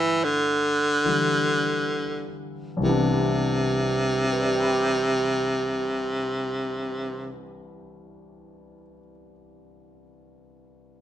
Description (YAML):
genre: jazz ballad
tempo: 42-52 BPM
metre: 4/4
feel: swing 67% on 8ths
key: C major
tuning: A4 = 441 Hz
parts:
  - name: edgy baritone saxophone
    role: melody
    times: 0.0-7.3 s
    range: C3 to E3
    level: -23 LUFS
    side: right 1 dB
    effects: none
  - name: warm concert grand piano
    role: accompaniment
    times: 0.0-11.0 s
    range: C2 to G6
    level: -28 LUFS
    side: left 2 dB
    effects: none
room: moderate recital hall reverb, RT60 1.5 s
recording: close, detailed microphones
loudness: -22 LUFS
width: side -11 dB against mid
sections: 0.0-2.8 A section; 2.8-8.5 B section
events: slowing down 0.0-2.8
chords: 0.0 G; 2.8 Cmaj9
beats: 0.26 1.48 | 2.83 4.25 5.67 7.09